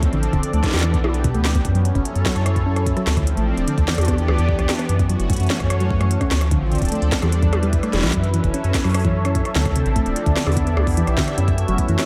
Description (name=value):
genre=IDM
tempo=148 BPM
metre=4/4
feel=straight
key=F# phrygian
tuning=A4 = 440 Hz
part: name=warm analog pad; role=sustained chords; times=0.0-12.1 s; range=E3 to D5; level=-27 LUFS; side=equal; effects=chorus, vintage 12-bit sampler grit
part: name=round analog bass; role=bass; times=0.0-12.0 s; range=D1 to F#2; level=-22 LUFS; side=equal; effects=none
part: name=electronic kick drum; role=drums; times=0.0-11.9 s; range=none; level=-25 LUFS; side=equal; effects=none
part: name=organic electronic drum kit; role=drums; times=0.0-12.1 s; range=hi-hat, rim click, snare drum, toms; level=-28 LUFS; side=equal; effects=tape echo
part: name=thumb-piano-like synth pluck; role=arpeggios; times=0.1-12.0 s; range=D2 to E4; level=-27 LUFS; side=equal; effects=chorus, tape echo
part: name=bubbling stepped-filter texture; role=texture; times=8.1-12.1 s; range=E4 to E5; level=-36 LUFS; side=equal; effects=chorus, built-in reverb
room=light reverb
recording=echo-heavy mix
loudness=-19 LUFS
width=mono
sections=0.0-12.1 A section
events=none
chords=0.0 Dm7; 0.6 Em7; 1.6 F#m7; 3.1 Dm7; 3.9 Em7; 4.9 F#m7; 6.3 Dm7; 7.1 Em7; 8.1 F#m7; 9.6 Dm7; 10.4 Em7; 11.4 F#m7